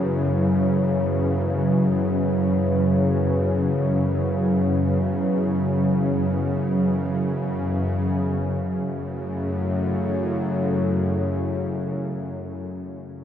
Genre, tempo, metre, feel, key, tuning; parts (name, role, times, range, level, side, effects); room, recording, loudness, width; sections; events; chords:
dark ambient drone; free time; F# minor; A4 = 441 Hz
deep dark ambient pad; sustained chords; 0.0-12.5 s; F#3 to C#5; -24 LUFS; right 1 dB; chorus, built-in reverb
bowed-like drone; drone; 0.0-12.1 s; F#2 to C#3; -23 LUFS; left 1 dB; built-in reverb
moderate plate reverb, RT60 2.9 s; dreamy mix soaked in reverb; -20 LUFS; side -9 dB against mid
0.0-8.2 A section; 8.2-12.2 B section
0.0 F#5; 8.2 F#m